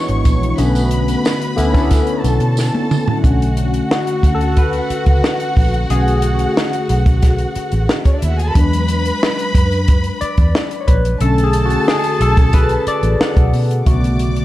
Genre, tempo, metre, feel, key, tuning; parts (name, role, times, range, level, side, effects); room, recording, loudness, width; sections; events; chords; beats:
lush 1970s-style soul; 90 BPM; 4/4; straight; B dorian; A4 = 439 Hz
dark studio string section; second line; 0.0-14.4 s; C#4 to D6; -23 LUFS; equal
barky tine electric piano; accompaniment; 0.0-14.4 s; C#3 to F#5; -19 LUFS; left 2 dB; phaser
vintage muted fingered electric bass; bass; 0.1-14.4 s; G#1 to B2; -17 LUFS; equal
compact cocktail drum kit; drums; 0.1-14.4 s; hi-hat, kick drum, snare drum, toms; -15 LUFS; equal
tambourine; percussion; 0.3-3.1 s; -34 LUFS; right 8 dB
small room ambience; dark, warm production; -13 LUFS; side -15 dB against mid
0.0-3.2 A section; 3.2-13.9 B section
drum fill 2.6-3.2; tine electric piano solo 3.2-13.9
0.0 E7; 0.6 Bm7; 8.6 E7; 11.2 Bm7
| 0.59 1.25 1.91 2.58 | 3.24 3.90 4.57 5.23 | 5.90 6.56 7.22 7.89 | 8.55 9.22 9.88 10.54 | 11.21 11.87 12.54 13.20 | 13.86